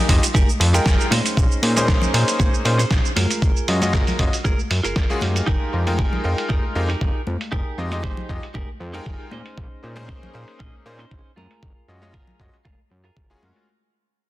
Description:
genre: nu-disco, nu disco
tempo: 117 BPM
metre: 4/4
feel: swing 53% on 16ths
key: unclear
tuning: A4 = 439 Hz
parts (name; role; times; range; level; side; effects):
- direct-recorded clean electric guitar; riff; 0.0-13.4 s; Db4 to Eb5; -29 LUFS; right 2 dB; lush chorus, low-pass filter, tape echo
- bright electric grand piano; accompaniment; 0.1-13.7 s; Ab3 to G5; -26 LUFS; left 1 dB; sidechain pumping, tape echo
- fat analog bass; bass; 0.1-13.5 s; F1 to Bb2; -22 LUFS; equal; none
- dusty soul sampler-style drum kit; drums; 0.1-13.7 s; cabasa, hi-hat, snare drum; -24 LUFS; right 2 dB; low-pass filter on hats, low-pass filter on perc, low-pass filter on snare
- electronic kick drum; drums; 0.1-13.3 s; none; -20 LUFS; equal; none
- congas; percussion; 0.3-13.5 s; none; -30 LUFS; left 3 dB; none
room: light reverb, digital ambience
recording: dense, heavily limited modern master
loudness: -18 LUFS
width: side -16 dB against mid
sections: 0.0-13.7 A section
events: fade-out 0.0-13.7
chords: 0.0 Fm11; 1.1 Bbm11; 3.2 Gbmaj9; 5.5 Fm11; 9.3 Bbm11; 11.4 Gbmaj9

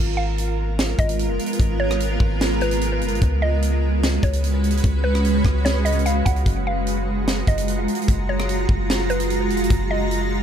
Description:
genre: hip hop, atmospheric cloud-rap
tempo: 148 BPM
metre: 4/4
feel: half-time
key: unclear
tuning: A4 = 440 Hz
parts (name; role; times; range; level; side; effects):
- granular cloud pad; sustained chords; 0.0-10.4 s; G#3 to A#5; -23 LUFS; right 2 dB; built-in reverb, sidechain pumping
- long sustained 808-style bass; bass; 0.0-10.4 s; E#1 to C#2; -22 LUFS; equal; none
- mallet-like synth pluck; melody; 0.2-10.4 s; B4 to F#5; -28 LUFS; equal; chorus, digital delay
- tight funk drum kit; drums; 0.4-10.2 s; hi-hat, kick drum, rim click, snare drum; -23 LUFS; equal; none
room: little or no reverb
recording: none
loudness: -18 LUFS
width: side -9 dB against mid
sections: 0.0-10.4 A section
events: none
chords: 0.0 G#m69; 3.2 C#7sus4; 6.5 F#maj9

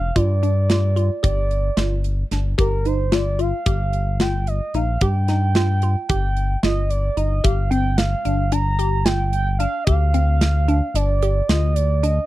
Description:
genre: progressive instrumental, band music in an uneven meter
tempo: 222 BPM (eighths)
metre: 9/8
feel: straight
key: G minor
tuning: A4 = 435 Hz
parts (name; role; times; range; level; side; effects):
- expressive synth lead; melody; 0.0-12.3 s; Bb4 to Bb5; -25 LUFS; right 3 dB; chorus
- glassy wavetable pluck; arpeggios; 0.0-12.2 s; C4 to G4; -26 LUFS; left 2 dB; chorus
- smooth gliding synth bass; bass; 0.0-12.2 s; F1 to G2; -19 LUFS; equal; none
- tight metal drum kit; drums; 0.2-12.2 s; hi-hat, kick drum, snare drum; -22 LUFS; equal; none
room: little or no reverb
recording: dry, close 1970s-style studio recording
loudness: -17 LUFS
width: side -16 dB against mid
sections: 0.0-7.4 A section; 7.4-12.3 B section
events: none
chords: 0.0 G5; 2.6 G7(no3)

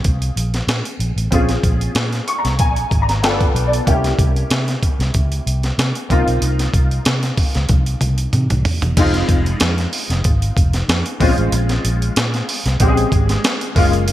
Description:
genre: polished 1980s jazz-funk pop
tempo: 94 BPM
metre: 4/4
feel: swing 54% on 16ths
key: Bb minor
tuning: A4 = 438 Hz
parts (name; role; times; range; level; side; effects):
- clear baby grand piano; accompaniment; 0.0-14.1 s; Ab3 to Db6; -21 LUFS; left 1 dB; ensemble chorus
- breakbeat sampler-style drum kit; drums; 0.0-14.1 s; crash cymbal, hi-hat, kick drum, snare drum, toms; -18 LUFS; equal; none
- vintage muted fingered electric bass; bass; 0.1-14.1 s; E1 to C3; -18 LUFS; equal; none
room: light reverb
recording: bright 1980s-style digital production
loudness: -15 LUFS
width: side -14 dB against mid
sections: 0.0-9.0 A section; 9.0-14.1 B section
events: grand piano fill 2.0-3.9; drum fill 7.7-9.0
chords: 0.0 Bbm9; 3.2 G9; 3.9 C7b9; 6.1 F7sus4; 9.0 Fm7; 11.2 Bbm7

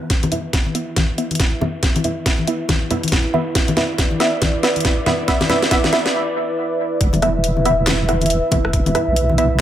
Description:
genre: deep dubstep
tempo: 139 BPM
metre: 4/4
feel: swing 60% on 16ths, half-time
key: unclear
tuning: A4 = 440 Hz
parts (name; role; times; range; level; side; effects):
- dark analog pad; sustained chords; 0.0-9.6 s; E4 to E5; -23 LUFS; equal; chorus
- electronic kick drum; drums; 0.1-8.8 s; none; -19 LUFS; equal; small room ambience
- garage drum kit; drums; 0.1-9.5 s; handclaps, hi-hat, rim click, snare drum; -21 LUFS; equal; small room ambience
- congas; percussion; 0.2-9.4 s; none; -24 LUFS; left 3 dB; dub echo
- filtered dub chord stab; stabs; 0.3-9.4 s; B3 to E5; -22 LUFS; right 2 dB; chorus, dub echo
- deep soft wobble bass; bass; 7.0-9.6 s; E1 to B1; -19 LUFS; equal; chorus
room: moderate spring reverb, RT60 1.9 s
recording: none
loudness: -16 LUFS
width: side -11 dB against mid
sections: 0.0-7.0 A section; 7.0-9.6 B section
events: build-up 0.0-7.0; filter sweep on synth stab 0.0-7.0; filter sweep on analog synth pad 0.0-7.0; drum fill 0.1-6.1; break 6.1-7.0; drop 7.0-9.6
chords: 0.0 E5

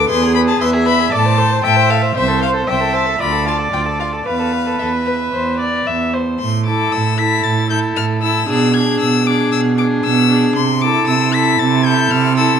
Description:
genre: quick classical-period movement for string quartet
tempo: 116 BPM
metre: 4/4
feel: straight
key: A minor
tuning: A4 = 440 Hz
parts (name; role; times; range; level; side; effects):
- warm violin; melody; 0.0-12.6 s; E5 to B6; -19 LUFS; left 10 dB; none
- dark violin; second line; 0.0-12.6 s; F4 to E5; -20 LUFS; left 3 dB; none
- rich viola; accompaniment; 0.0-12.6 s; D4 to E5; -20 LUFS; right 3 dB; none
- rich cello; bass; 0.0-12.6 s; C2 to C3; -17 LUFS; right 4 dB; none
room: moderate recital hall reverb, RT60 1.5 s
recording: none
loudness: -13 LUFS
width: side -8 dB against mid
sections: 0.0-6.4 A section; 6.4-12.6 B section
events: none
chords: 0.1 E; 1.1 Am; 2.2 Am/C; 3.2 Dm; 4.3 Esus4; 6.4 A5; 8.5 E7/B; 10.6 Am/C

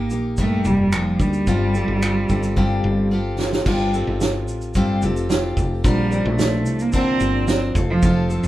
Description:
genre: acoustic pop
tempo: 110 BPM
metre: 4/4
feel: straight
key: unclear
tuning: A4 = 441 Hz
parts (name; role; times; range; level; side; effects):
- warm cello; melody; 0.0-8.4 s; F3 to C4; -22 LUFS; right 2 dB; none
- picked steel-string acoustic guitar; accompaniment; 0.0-8.5 s; G2 to Bb4; -22 LUFS; left 1 dB; none
- woody fretless electric bass; bass; 0.0-8.5 s; F1 to D2; -24 LUFS; equal; none
- loose indie drum kit; drums; 0.1-8.5 s; crash cymbal, finger snaps, kick drum, shaker, snare drum; -23 LUFS; right 1 dB; none
room: moderate studio reverb, RT60 0.5 s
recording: band playing live in one room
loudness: -17 LUFS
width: side -15 dB against mid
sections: 0.0-3.7 A section; 3.7-5.8 B section; 5.8-8.5 C section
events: drum fill 2.6-3.7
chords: 0.0 Eb/G; 1.5 Fadd9/G; 5.8 Bbadd9; 7.8 F

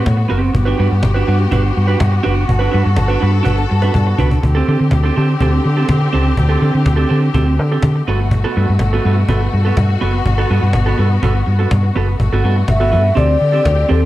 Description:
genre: disco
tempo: 124 BPM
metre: 4/4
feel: straight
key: unclear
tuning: A4 = 440 Hz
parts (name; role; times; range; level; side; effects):
- electric guitar at the edge of break-up; accompaniment; 0.0-14.1 s; B3 to B4; -20 LUFS; right 5 dB; none
- clear studio string section; sustained chords; 0.0-14.1 s; B2 to A4; -22 LUFS; left 2 dB; none
- hollow-body short-scale fingered electric bass; bass; 0.1-14.1 s; F#1 to D3; -14 LUFS; equal; none
- cajon; drums; 0.1-14.0 s; none; -18 LUFS; equal; none
- mellow hollow alto flute; melody; 12.7-14.1 s; A4 to E5; -16 LUFS; left 2 dB; none
room: studio reverb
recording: dark, warm production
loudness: -12 LUFS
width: side -15 dB against mid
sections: 0.0-12.2 A section; 12.2-14.1 B section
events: drum fill 3.5-4.4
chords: 0.0 Am9; 0.5 Gmaj7; 4.4 D7sus4; 8.1 Gmaj9; 13.2 D7sus4

